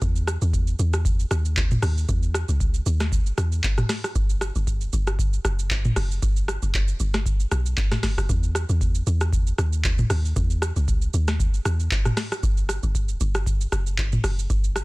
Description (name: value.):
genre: amapiano.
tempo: 116 BPM.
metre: 4/4.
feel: swing 55% on 16ths.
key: unclear.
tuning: A4 = 439 Hz.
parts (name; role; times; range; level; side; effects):
deep log drum bass; bass; 0.0-14.8 s; F#1 to E2; -23 LUFS; equal; none.
booming analog drum machine; drums; 0.0-14.8 s; handclaps, hi-hat, kick drum, rim click, shaker, snare drum, toms; -23 LUFS; equal; vintage 12-bit sampler grit.
room: little or no reverb.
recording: dense, heavily limited modern master.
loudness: -21 LUFS.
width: side -23 dB against mid.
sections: 0.0-14.8 A section.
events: none.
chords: none.